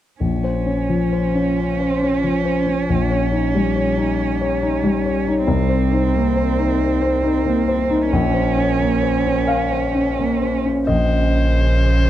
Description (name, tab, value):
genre	neoclassical piano and strings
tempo	45 BPM (dotted quarters)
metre	6/8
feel	rubato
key	Bb dorian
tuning	A4 = 440 Hz
part	rich cello	second line	0.2-12.1 s	Db3 to Db4	-24 LUFS	right 8 dB	none
part	dark grand piano	accompaniment	0.2-12.1 s	Bb1 to F5	-18 LUFS	left 2 dB	none
part	dark analog pad	sustained chords	1.1-12.1 s	Db4 to Db5	-27 LUFS	right 2 dB	chorus, phaser
part	rich violin	melody	10.9-12.1 s	C5	-24 LUFS	left 3 dB	none
part	sub bass with octave	bass	10.9-12.1 s	Bb1	-16 LUFS	right 1 dB	none
room	light reverb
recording	dark, warm production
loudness	-16 LUFS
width	side -12 dB against mid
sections	0.2-10.9 A section; 10.9-12.1 B section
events	none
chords	0.2 Bbmadd9; 2.9 Eb7/Bb; 5.5 Cm7; 8.1 Bbmadd9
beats	| 0.21 1.56 | 2.87 4.17 | 5.47 6.79 | 8.10 9.48 | 10.89